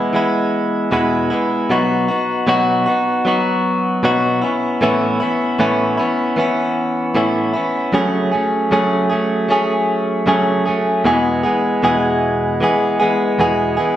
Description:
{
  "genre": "pop",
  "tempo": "77 BPM",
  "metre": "4/4",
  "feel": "straight",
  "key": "E major",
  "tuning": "A4 = 440 Hz",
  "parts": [
    { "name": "direct-recorded clean electric guitar", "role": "solo", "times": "0.0-14.0 s", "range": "E2 to G#4", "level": "-14 LUFS", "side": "equal", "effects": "spring reverb" }
  ],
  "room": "wet large studio reverb, RT60 1.5 s",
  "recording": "band playing live in one room, nothing above 10.8 kHz",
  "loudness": "-14 LUFS",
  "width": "side -12 dB against mid",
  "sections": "0.0-11.0 A section; 11.0-14.0 B section",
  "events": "none",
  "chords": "0.0 E; 1.7 B; 4.4 Aadd9; 7.9 F#madd9; 11.0 E",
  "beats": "0.14 0.92 | 1.70 2.48 3.26 4.04 | 4.81 5.59 6.37 7.15 | 7.93 8.71 9.49 10.27 | 11.05 11.83 12.61 13.39"
}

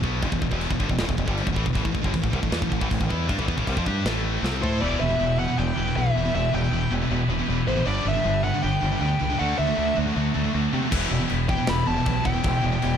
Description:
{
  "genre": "heavy metal",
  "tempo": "157 BPM",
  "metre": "4/4",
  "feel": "straight",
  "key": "E minor",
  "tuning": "A4 = 439 Hz",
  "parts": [
    { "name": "scooped high-gain guitar", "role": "riff", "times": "0.0-13.0 s", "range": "E2 to A4", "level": "-28 LUFS", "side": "left 10 dB", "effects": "distortion" },
    { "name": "scooped high-gain guitar", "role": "riff", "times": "0.0-13.0 s", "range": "E2 to A4", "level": "-27 LUFS", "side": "right 8 dB", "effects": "distortion" },
    { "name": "growling fingered electric bass", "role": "bass", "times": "0.0-13.0 s", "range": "E1 to C3", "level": "-28 LUFS", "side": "equal", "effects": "overdrive" },
    { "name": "tight metal drum kit", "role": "drums", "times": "0.0-4.7, 10.9-12.9 s", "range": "china cymbal, crash cymbal, kick drum, snare drum, toms", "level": "-28 LUFS", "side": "equal", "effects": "none" },
    { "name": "high-gain lead guitar", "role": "melody", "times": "4.6-13.0 s", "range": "C5 to B5", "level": "-27 LUFS", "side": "left 1 dB", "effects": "distortion, ping-pong delay" },
    { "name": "heavy high-gain guitar", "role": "riff", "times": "4.8-13.0 s", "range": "D3 to B4", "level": "-30 LUFS", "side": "equal", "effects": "distortion" }
  ],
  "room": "small room ambience",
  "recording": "dark, warm production",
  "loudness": "-21 LUFS",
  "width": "side -8 dB against mid",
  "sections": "0.0-4.8 A section; 4.8-13.0 B section",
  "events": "drum fill 4.4-4.8",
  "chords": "0.0 Em; 1.8 A5; 4.8 Em; 7.9 G; 9.4 D; 10.9 Em",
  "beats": "| 0.23 0.61 0.99 1.38 | 1.76 2.14 2.53 2.91 | 3.29 3.68 4.06 4.44 | 4.82 5.21 5.59 5.97 | 6.35 6.73 7.11 7.49 | 7.87 8.25 8.63 9.02 | 9.40 9.78 10.16 10.54 | 10.92 11.30 11.68 12.06 | 12.45 12.83"
}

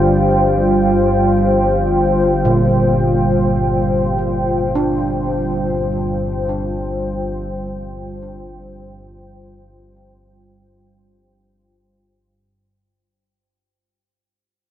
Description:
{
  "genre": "dark ambient drone",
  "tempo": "free time",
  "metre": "none",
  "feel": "none",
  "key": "G minor",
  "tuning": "A4 = 440 Hz",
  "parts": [
    { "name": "dark analog pad", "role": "sustained chords", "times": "0.0-12.3 s", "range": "G3 to G5", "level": "-16 LUFS", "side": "equal", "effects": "chorus" },
    { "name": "deep rumbling drone", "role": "drone", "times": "0.0-12.4 s", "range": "G1 to G2", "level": "-22 LUFS", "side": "equal", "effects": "built-in reverb" },
    { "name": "gamelan-type bossed gongs", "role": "arpeggios", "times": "2.5-11.7 s", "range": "Bb2 to D4", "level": "-22 LUFS", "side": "right 1 dB", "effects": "ping-pong delay" }
  ],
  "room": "wet huge ambient reverb, RT60 8.6 s",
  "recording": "worn, warbling old tape, cassette tape, warbly pitch drift",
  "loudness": "-14 LUFS",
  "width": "side -11 dB against mid",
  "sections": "0.0-12.3 A section",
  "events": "fade-out 0.0-12.3",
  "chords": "0.0 Gm",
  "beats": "free time"
}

